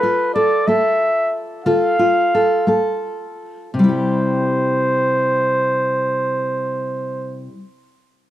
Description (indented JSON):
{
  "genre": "folk",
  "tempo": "55-62 BPM (dotted quarters)",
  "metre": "6/8",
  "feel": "straight",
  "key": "C major",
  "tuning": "A4 = 440 Hz",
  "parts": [
    { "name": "clear flugelhorn", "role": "melody", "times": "0.0-7.4 s", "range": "B4 to F5", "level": "-18 LUFS", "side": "right 1 dB", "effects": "none" },
    { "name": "fingerpicked steel-string acoustic guitar", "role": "accompaniment", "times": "0.0-7.6 s", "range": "C3 to A4", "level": "-19 LUFS", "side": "left 1 dB", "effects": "none" }
  ],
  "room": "little or no reverb",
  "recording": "dry, close 1970s-style studio recording",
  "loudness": "-15 LUFS",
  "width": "side -13 dB against mid",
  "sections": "0.0-3.7 A section; 3.7-8.1 B section",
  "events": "slowing down 0.0-3.7",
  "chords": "0.0 Dm; 3.7 C",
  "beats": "0.67 | 1.66 2.68 | 3.74 4.82 | 5.91 6.99"
}